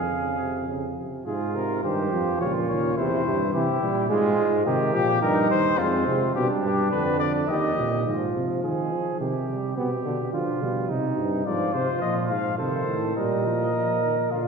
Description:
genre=classical, imitative canzona for brass ensemble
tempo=106 BPM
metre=3/4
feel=straight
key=F minor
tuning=A4 = 441 Hz
part: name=mellow cornet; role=melody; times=0.0-8.1, 11.5-14.5 s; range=Eb4 to F5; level=-28 LUFS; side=left 4 dB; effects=none
part: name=warm flugelhorn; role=second line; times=0.0-14.5 s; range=C4 to Bb4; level=-28 LUFS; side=right 4 dB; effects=none
part: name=warm bass trombone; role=bass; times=0.0-14.5 s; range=Db2 to F3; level=-28 LUFS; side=right 1 dB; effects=none
part: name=warm trombone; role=accompaniment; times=0.1-14.5 s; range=Bb2 to B3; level=-28 LUFS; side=right 1 dB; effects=none
room=wet concert hall reverb, RT60 2.1 s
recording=heard from further back in the room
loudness=-22 LUFS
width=side -5 dB against mid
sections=0.0-1.3 A section; 1.3-8.1 B section; 8.1-14.5 A section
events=none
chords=0.0 Fm; 1.3 Fm/Ab; 2.4 Bbm/Db; 3.0 C/E; 4.1 Fm/Ab; 4.7 Cm; 5.8 Fm; 6.4 G; 7.5 Cm/Eb; 8.1 Fm/Ab; 9.2 Cm; 9.8 G/B; 10.9 Cm; 11.5 Fm/Ab; 12.6 Adim/C; 13.2 Bbsus4

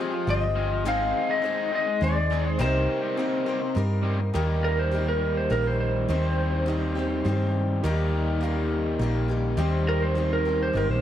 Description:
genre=folk rock and heartland rock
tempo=103 BPM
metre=3/4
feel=straight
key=C minor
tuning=A4 = 444 Hz
part: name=electric slide guitar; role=melody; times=0.0-11.0 s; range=Bb4 to Ab5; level=-27 LUFS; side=equal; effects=slapback echo
part: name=clear concert grand piano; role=accompaniment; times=0.0-11.0 s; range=C4 to F5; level=-36 LUFS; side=right 4 dB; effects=none
part: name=picked acoustic archtop guitar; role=accompaniment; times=0.0-11.0 s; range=Ab2 to Bb4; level=-33 LUFS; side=left 6 dB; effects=none
part: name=mellow tonewheel organ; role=sustained chords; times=0.0-11.0 s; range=G3 to C6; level=-37 LUFS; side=right 1 dB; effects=none
part: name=raw garage guitar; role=riff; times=0.0-11.0 s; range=C3 to C5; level=-30 LUFS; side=left 1 dB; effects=overdrive
part: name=hollow-body short-scale fingered electric bass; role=bass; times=0.3-11.0 s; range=G1 to G2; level=-26 LUFS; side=equal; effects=none
room=light reverb, small room reverb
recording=dark, warm production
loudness=-22 LUFS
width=side -11 dB against mid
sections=0.0-4.3 A section; 4.3-11.0 B section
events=electric slide guitar solo 4.3-11.0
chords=0.0 Fmadd9; 0.9 Ab; 2.6 Cm7; 4.3 Eb; 6.1 Cm/Eb; 7.8 Eb; 9.6 Cm/Eb

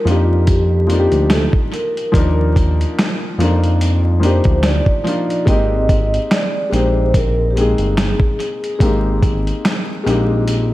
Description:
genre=lo-fi hip hop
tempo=72 BPM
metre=4/4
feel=swing 55% on 16ths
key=Ab lydian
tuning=A4 = 439 Hz
part: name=vibraphone with soft mallets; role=melody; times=0.0-8.8 s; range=F4 to Eb5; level=-21 LUFS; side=right 1 dB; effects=tape echo
part: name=felt-muted upright piano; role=accompaniment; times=0.0-10.7 s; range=F3 to Bb4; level=-20 LUFS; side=left 2 dB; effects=none
part: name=smooth synth bass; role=bass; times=0.1-10.7 s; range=G1 to F2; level=-16 LUFS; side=equal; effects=none
part: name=dusty soul sampler-style drum kit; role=drums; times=0.1-10.7 s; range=finger snaps, hi-hat, kick drum, snare drum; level=-18 LUFS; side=equal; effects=tape echo
room=light reverb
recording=echo-heavy mix, vinyl crackle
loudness=-13 LUFS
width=side -16 dB against mid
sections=0.0-10.7 A section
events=none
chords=0.0 Ebmaj9; 5.5 Abmaj9

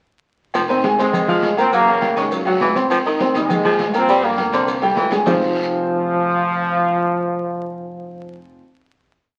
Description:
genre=latin, salsa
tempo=204 BPM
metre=4/4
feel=straight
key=F minor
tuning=A4 = 440 Hz
part: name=breathy baritone saxophone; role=second line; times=0.5-5.4 s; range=D3 to G3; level=-24 LUFS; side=equal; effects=none
part: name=upright bass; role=bass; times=0.5-8.6 s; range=F1 to G2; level=-36 LUFS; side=equal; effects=none
part: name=agogo bells and timbales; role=percussion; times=0.5-5.3 s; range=none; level=-28 LUFS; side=equal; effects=none
part: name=cowbell and bongos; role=percussion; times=0.5-5.3 s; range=none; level=-34 LUFS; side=equal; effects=none
part: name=guiro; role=percussion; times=0.5-5.3 s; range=none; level=-38 LUFS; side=equal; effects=none
part: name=maracas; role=percussion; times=0.5-5.3 s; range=none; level=-41 LUFS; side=equal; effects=none
part: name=congas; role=percussion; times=0.6-5.3 s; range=none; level=-29 LUFS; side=equal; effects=none
part: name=warm concert grand piano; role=accompaniment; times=0.7-8.6 s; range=F3 to Ab6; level=-22 LUFS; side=equal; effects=none
part: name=bright trombone section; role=melody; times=1.0-8.4 s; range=Bb2 to C4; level=-22 LUFS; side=equal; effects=none
room=wet studio reverb, RT60 0.7 s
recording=very old 78 rpm record, vinyl crackle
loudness=-18 LUFS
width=mono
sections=0.6-5.3 mambo (horn riffs); 5.3-7.6 final chord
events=drum fill 4.8-5.3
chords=0.6 Fm7; 1.7 Gb9; 2.9 Abmaj7; 4.1 Gm7; 4.7 C7; 5.3 Fm7

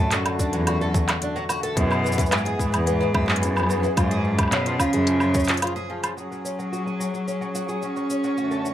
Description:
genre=folktronica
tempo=109 BPM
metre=4/4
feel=straight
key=F# minor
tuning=A4 = 440 Hz
part: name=rich cello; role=melody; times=0.0-8.7 s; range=F#2 to C#4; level=-26 LUFS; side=equal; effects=none
part: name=hand-pumped harmonium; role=sustained chords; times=0.0-8.7 s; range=F#2 to G#4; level=-31 LUFS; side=equal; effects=plate reverb
part: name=fingerpicked twelve-string acoustic guitar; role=arpeggios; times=0.0-8.7 s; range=E3 to A4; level=-29 LUFS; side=left 1 dB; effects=low-pass filter, tape echo, plate reverb
part: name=organic electronic drum kit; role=drums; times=0.1-8.7 s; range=handclaps, hi-hat, shaker, woodblock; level=-26 LUFS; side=right 1 dB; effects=none
part: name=electronic kick drum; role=drums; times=0.4-5.5 s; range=none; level=-23 LUFS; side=equal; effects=none
part: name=rich cello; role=bass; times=0.5-5.3 s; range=E2 to F#2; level=-26 LUFS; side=equal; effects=none
part: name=flickering grainy texture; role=texture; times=6.7-8.7 s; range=C#5 to C#6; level=-36 LUFS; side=left 2 dB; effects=built-in reverb, plate reverb
room=moderate studio reverb, RT60 0.5 s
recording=none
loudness=-20 LUFS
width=side -11 dB against mid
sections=0.0-6.2 A section; 6.2-8.7 B section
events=break 5.6-6.2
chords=0.0 D; 1.8 E; 4.0 C#/F#; 6.2 F#sus2

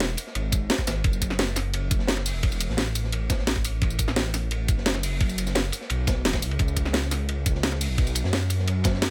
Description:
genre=liquid drum and bass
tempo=173 BPM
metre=4/4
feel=straight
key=F# minor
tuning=A4 = 441 Hz
part: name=dark detuned saw bass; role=bass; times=0.0-9.1 s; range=E1 to F#2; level=-29 LUFS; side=equal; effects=none
part: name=crunchy breakbeat drum kit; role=drums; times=0.0-9.1 s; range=hi-hat, ride cymbal, snare drum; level=-35 LUFS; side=equal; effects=high-pass filter on cymbals, high-pass filter on hats, high-pass filter on snare, high-pass filter on room
part: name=drum and bass drum kit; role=drums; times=0.0-9.1 s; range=hi-hat, snare drum, tambourine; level=-29 LUFS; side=equal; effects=none
part: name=electronic kick drum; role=drums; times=0.5-8.9 s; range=none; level=-28 LUFS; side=equal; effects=none
room=studio reverb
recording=none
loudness=-25 LUFS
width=mono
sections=0.0-9.1 A section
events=none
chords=none

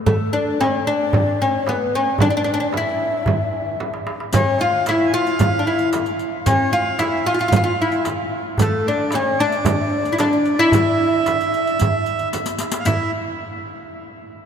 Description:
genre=Turkish makam ensemble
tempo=112 BPM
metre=4/4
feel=straight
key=E makam hicaz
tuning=A4 = 440 Hz
part: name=oud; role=melody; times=0.1-13.1 s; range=A3 to F4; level=-20 LUFS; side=left 1 dB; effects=none
part: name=breathy mellow low ney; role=second line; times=0.1-13.1 s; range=A4 to F5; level=-26 LUFS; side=left 3 dB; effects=none
part: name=darbuka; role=percussion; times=0.1-13.1 s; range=none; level=-25 LUFS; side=equal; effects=none
part: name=frame drum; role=percussion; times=0.1-13.1 s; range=none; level=-26 LUFS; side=right 4 dB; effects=none
part: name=accordion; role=second line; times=4.3-13.1 s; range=A4 to G#5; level=-25 LUFS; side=right 4 dB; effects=none
part: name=riq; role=percussion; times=4.3-13.1 s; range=none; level=-34 LUFS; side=left 5 dB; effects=none
room=wet cathedral reverb, RT60 5.6 s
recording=in a vast, echoing space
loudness=-17 LUFS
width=side -7 dB against mid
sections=0.0-12.9 A section; 12.9-14.5 B section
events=drum fill 3.8-4.3, 12.3-12.9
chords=none

